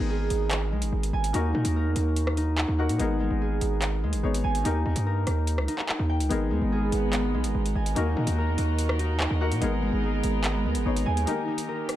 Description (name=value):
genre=hip hop, drill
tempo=145 BPM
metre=4/4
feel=half-time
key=G# minor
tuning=A4 = 440 Hz
part: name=felt-muted upright piano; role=accompaniment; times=0.0-12.0 s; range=A#3 to C#5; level=-33 LUFS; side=left 6 dB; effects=none
part: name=concert harp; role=arpeggios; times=0.0-12.0 s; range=G#3 to G#5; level=-30 LUFS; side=right 1 dB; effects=ping-pong delay
part: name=distorted 808-style bass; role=bass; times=0.0-11.3 s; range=G#1 to A#2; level=-26 LUFS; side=equal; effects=distortion
part: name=drill drum kit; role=drums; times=0.3-12.0 s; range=handclaps, hi-hat, rim click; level=-32 LUFS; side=equal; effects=none
part: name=dark studio string section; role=sustained chords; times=6.3-12.0 s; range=D#3 to A#4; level=-32 LUFS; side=right 1 dB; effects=none
room=studio reverb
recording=dark, warm production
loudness=-24 LUFS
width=side -13 dB against mid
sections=0.0-12.0 A section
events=break 11.3-12.0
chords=0.0 G#madd9; 1.3 D#m; 3.0 G#madd9; 4.7 D#; 6.3 G#madd9; 8.0 D#m; 9.6 G#madd9; 11.3 D#